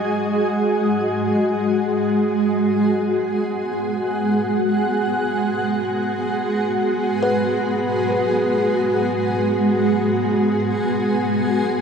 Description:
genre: ambient.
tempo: free time.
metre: none.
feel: none.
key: G# minor.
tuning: A4 = 440 Hz.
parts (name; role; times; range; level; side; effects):
granular cloud pad; sustained chords; 0.0-11.8 s; G#3 to G#5; -18 LUFS; equal; built-in reverb.
kalimba; arpeggios; 0.0-0.6, 7.2-10.0 s; A#4 to B4; -26 LUFS; equal; diffuse ambient delay.
room: wet shimmer reverb, RT60 8.1 s.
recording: none.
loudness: -18 LUFS.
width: side -6 dB against mid.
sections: 0.1-11.8 A section.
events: none.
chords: 0.1 G#m7.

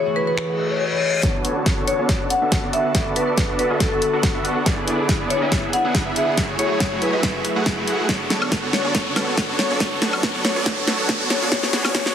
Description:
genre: future bass.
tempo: 140 BPM.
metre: 4/4.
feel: swing 53% on 16ths, half-time.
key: unclear.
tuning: A4 = 440 Hz.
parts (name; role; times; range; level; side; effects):
marimba with medium hard mallets; melody; 0.0-12.1 s; A4 to F#5; -25 LUFS; left 2 dB; sidechain pumping, low-pass filter, dub echo.
airy breathy pad; sustained chords; 0.0-12.1 s; D3 to G#5; -31 LUFS; right 1 dB; chorus, sidechain pumping.
concert harp; arpeggios; 0.0-12.1 s; E4 to B5; -29 LUFS; left 3 dB; sidechain pumping, low-pass filter, dub echo.
big-room dance drum kit; drums; 0.4-12.1 s; finger snaps, hi-hat, snare drum, woodblock; -23 LUFS; equal; low-pass filter on snare, low-pass filter on hats, low-pass filter on perc.
reverse cymbal and riser; sound effects; 0.5-12.1 s; none; -29 LUFS; left 1 dB; none.
supersaw chords; riff; 1.2-12.1 s; A3 to F#5; -24 LUFS; right 1 dB; sidechain pumping, low-pass filter.
electronic kick drum; drums; 1.2-12.0 s; none; -24 LUFS; equal; none.
room: moderate digital room reverb, RT60 1.1 s, digital ambience.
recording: heavily compressed radio sound, multiband compression, high-pass filter.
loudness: -18 LUFS.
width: side -9 dB against mid.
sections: 0.0-1.2 A section; 1.2-12.1 B section.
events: reverse cymbal 0.5-1.2; build-up 1.2-12.1; drum fill 1.2-12.1; riser 1.2-12.1; filter sweep on supersaw synth 1.2-12.1; filter sweep on marimba 1.2-12.1; filter sweep on harp 1.2-12.1; filter sweep 1.2-12.1.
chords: 0.0 F#m9; 1.2 Bm9; 2.7 D6; 4.7 E7; 6.4 F#m9; 8.1 Bm9; 9.6 D6; 11.5 E7.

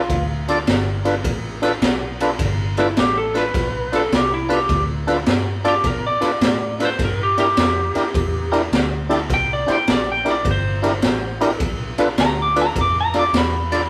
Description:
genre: electric blues shuffle.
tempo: 104 BPM.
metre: 4/4.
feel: swing 66% on 8ths.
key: G mixolydian.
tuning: A4 = 440 Hz.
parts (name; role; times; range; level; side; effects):
lightly driven lead guitar; melody; 0.0-13.9 s; E4 to D6; -23 LUFS; equal; none.
vintage muted fingered electric bass; bass; 0.0-13.9 s; G1 to B2; -28 LUFS; equal; none.
raw garage drum kit; drums; 0.1-13.8 s; kick drum, ride cymbal, snare drum; -24 LUFS; equal; none.
tonewheel organ; accompaniment; 0.5-13.8 s; D4 to D5; -24 LUFS; equal; slow rotary speaker, overdrive.
room: moderate stone room reverb, RT60 0.9 s.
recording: rough rehearsal-room recording.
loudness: -19 LUFS.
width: mono.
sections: 0.0-13.9 A section.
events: lead electric guitar solo 0.0-13.9.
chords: 0.0 G7; 7.0 C7; 11.6 G7 (rootless).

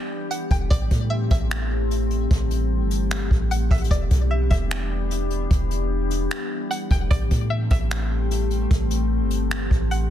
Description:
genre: hip hop, atmospheric cloud-rap.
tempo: 150 BPM.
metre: 4/4.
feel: half-time.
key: unclear.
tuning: A4 = 444 Hz.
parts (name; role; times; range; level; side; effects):
glassy FM pad; sustained chords; 0.0-10.1 s; E3 to G4; -28 LUFS; left 3 dB; ensemble chorus, built-in reverb, sidechain pumping.
string-like resonator pluck; melody; 0.3-10.1 s; D5 to G5; -31 LUFS; equal; chorus, low-pass filter, ping-pong delay.
jazz brush drum kit; drums; 0.3-10.0 s; finger snaps, hi-hat, kick drum; -22 LUFS; equal; soft clipping on snare.
soft 808-style bass; bass; 0.5-10.1 s; E1 to A2; -23 LUFS; equal; none.
room: small room ambience.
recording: dense, heavily limited modern master.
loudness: -20 LUFS.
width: side -11 dB against mid.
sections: 0.0-10.1 A section.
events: none.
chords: 0.0 Em7; 0.7 Am7; 3.9 Em7; 7.1 Am7.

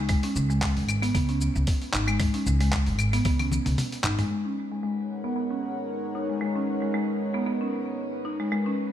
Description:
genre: organic downtempo.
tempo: 114 BPM.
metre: 4/4.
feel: swing 55% on 16ths.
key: G# minor.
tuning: A4 = 439 Hz.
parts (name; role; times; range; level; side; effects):
buzzing marimba with hard mallets; arpeggios; 0.0-8.8 s; G#3 to D#4; -28 LUFS; equal; low-pass filter, tape echo, shimmer reverb.
upright bass; bass; 0.0-4.2 s; G#1 to C#2; -26 LUFS; equal; sidechain pumping.
dusty soul sampler-style drum kit; drums; 0.1-4.3 s; claves, handclaps, hi-hat, shaker, toms; -30 LUFS; left 2 dB; studio reverb.
electronic kick drum; drums; 0.1-3.4 s; none; -26 LUFS; equal; studio reverb.
warm analog pad; sustained chords; 4.9-8.9 s; G#3 to F#5; -31 LUFS; right 1 dB; chorus, sidechain pumping, shimmer reverb.
room: light reverb.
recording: none.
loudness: -24 LUFS.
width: side -10 dB against mid.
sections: 0.0-4.3 A section; 4.3-8.9 B section.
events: drum fill 3.3-4.3; kick drops out 3.8-4.3; filter sweep on marimba 4.3-8.9.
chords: 0.0 G#sus4; 4.3 G#m11.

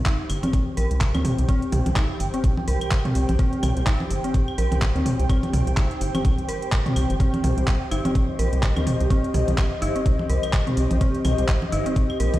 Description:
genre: minimal techno.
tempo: 126 BPM.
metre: 4/4.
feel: swing 57% on 16ths.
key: C minor.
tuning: A4 = 440 Hz.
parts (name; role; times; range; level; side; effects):
rubbery square bass; bass; 0.0-12.4 s; G1 to Eb2; -23 LUFS; equal; sidechain pumping.
ethereal airy pad; texture; 0.2-12.4 s; G4 to G5; -30 LUFS; equal; ensemble chorus, built-in reverb, sidechain pumping.
dark detuned synth bell; riff; 0.1-12.3 s; C4 to Bb4; -28 LUFS; equal; chorus, tremolo, sidechain pumping, tape echo.
electronic kick drum; drums; 0.1-12.1 s; none; -21 LUFS; equal; small room ambience.
garage drum kit; drums; 0.1-12.4 s; handclaps, hi-hat; -32 LUFS; equal; small room ambience.
electronic claves, congas and toms; percussion; 0.3-12.4 s; none; -28 LUFS; right 1 dB; small room ambience, tape echo.
room: digital ambience.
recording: played on a big sound system in a bare room, stone room reverb.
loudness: -20 LUFS.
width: side -15 dB against mid.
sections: 0.0-12.4 A section.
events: none.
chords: 0.0 C5.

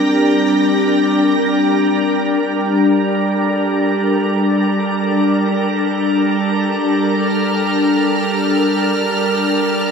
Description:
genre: ambient.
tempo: free time.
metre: none.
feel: none.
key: G minor.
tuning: A4 = 440 Hz.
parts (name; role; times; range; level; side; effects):
soft additive organ-like pad; sustained chords; 0.0-9.9 s; G3 to Bb4; -14 LUFS; equal; ensemble chorus, built-in reverb.
vibraphone with soft mallets; arpeggios; 0.0-2.4 s; D4; -19 LUFS; left 1 dB; ping-pong delay.
rich studio violin section; texture; 0.0-2.2, 7.2-9.9 s; F6 to Bb6; -25 LUFS; right 1 dB; none.
room: wet huge ambient reverb, RT60 7.2 s.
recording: none.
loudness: -14 LUFS.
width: side -6 dB against mid.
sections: 0.0-2.2 A section; 2.2-9.9 A section.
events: none.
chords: 0.0 Gm; 2.2 Gm9.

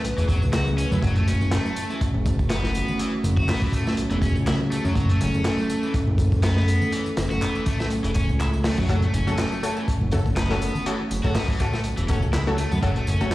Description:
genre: breakbeat, breaks.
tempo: 122 BPM.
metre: 4/4.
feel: swing 54% on 16ths.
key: F# minor.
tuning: A4 = 441 Hz.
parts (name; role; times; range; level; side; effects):
dark analog pad; sustained chords; 0.0-13.3 s; A3 to B4; -29 LUFS; right 1 dB; chorus, sidechain pumping.
crunchy breakbeat drum kit; drums; 0.0-13.3 s; hi-hat, kick drum, snare drum; -25 LUFS; equal; none.
electronic tambourine and handclaps; drums; 0.0-13.3 s; none; -38 LUFS; equal; none.
cranked stack guitar; riff; 0.2-13.3 s; E3 to F#4; -30 LUFS; equal; overdrive, digital delay.
fat analog bass; bass; 0.2-13.3 s; E1 to F#2; -23 LUFS; equal; none.
congas; percussion; 0.3-13.3 s; none; -32 LUFS; left 2 dB; none.
orchestra-hit-like synth stab; stabs; 8.9-13.3 s; A3 to A4; -29 LUFS; left 2 dB; built-in reverb, vintage 12-bit sampler grit, digital delay.
room: light reverb.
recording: played on a big sound system in a bare room, large studio reverb, vinyl crackle.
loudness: -20 LUFS.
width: side -17 dB against mid.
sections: 0.0-13.3 A section.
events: none.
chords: 0.0 F#m.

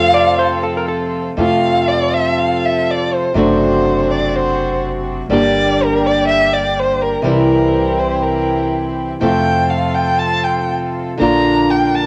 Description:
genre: tango.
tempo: 122 BPM.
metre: 4/4.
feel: rubato.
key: F major.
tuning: A4 = 440 Hz.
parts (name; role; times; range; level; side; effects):
hollow-body jazz guitar; second line; 0.0-1.3 s; A4 to D5; -20 LUFS; equal; cassette tape.
warm violin; second line; 0.0-12.1 s; Bb4 to Bb5; -19 LUFS; equal; cassette tape.
nylon-string guitar; accompaniment; 0.0-12.1 s; C3 to G4; -19 LUFS; equal; cassette tape.
rich chamber string section; stabs; 0.0-12.1 s; Bb3 to Bb4; -26 LUFS; equal; cassette tape.
upright bass; bass; 0.0-12.1 s; F#1 to F2; -28 LUFS; equal; none.
room: moderate studio reverb, RT60 0.5 s.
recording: home recording on cassette.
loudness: -16 LUFS.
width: mono.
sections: 0.0-1.4 A section; 1.4-12.1 A section.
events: violin solo 0.0-1.4, 1.4-12.1.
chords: 0.0 F; 3.4 D7/F#; 5.3 Gm; 7.2 C; 9.2 F; 11.2 Bb.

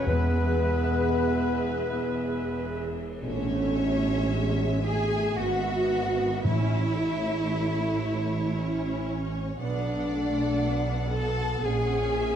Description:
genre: classical, slow romantic movement for symphony orchestra.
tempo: 57 BPM.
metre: 3/4.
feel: rubato.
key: A major.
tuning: A4 = 437 Hz.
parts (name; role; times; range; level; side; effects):
rich studio violin section; melody; 0.0-12.4 s; B4 to F#5; -39 LUFS; left 5 dB; none.
clear oboe; second line; 0.0-2.9 s; B4; -38 LUFS; right 1 dB; none.
mellow clarinet; second line; 0.0-2.6 s; B4; -36 LUFS; left 2 dB; none.
silver concert flute; second line; 0.0-2.6 s; B4; -35 LUFS; left 3 dB; none.
warm studio violin section; second line; 0.0-12.4 s; B4 to A5; -36 LUFS; left 2 dB; none.
warm bassoon; accompaniment; 0.0-2.9 s; G#3; -36 LUFS; right 1 dB; none.
warm studio viola section; accompaniment; 0.0-12.4 s; G#3 to E5; -35 LUFS; right 2 dB; none.
mellow French horn section; sustained chords; 0.0-2.6 s; B3; -30 LUFS; left 2 dB; none.
clear symphonic double bass section; bass; 0.0-12.4 s; E1 to B1; -31 LUFS; right 2 dB; none.
warm studio cello section; bass; 0.0-12.4 s; E2 to A4; -29 LUFS; right 1 dB; none.
cymbal swell and tam-tam; percussion; 0.1-7.5 s; none; -39 LUFS; left 1 dB; none.
timpani; percussion; 0.1-1.6, 6.4-8.0 s; E2 to A2; -29 LUFS; left 1 dB; none.
room: moderate recital hall reverb, RT60 1.5 s.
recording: dark, warm production.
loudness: -24 LUFS.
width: side -9 dB against mid.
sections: 0.0-3.2 A section; 3.2-12.4 B section.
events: band accent 3.2-4.3.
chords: 0.1 E; 3.2 A; 5.4 E/G#; 6.4 A; 9.6 Bm; 11.6 F#/A#.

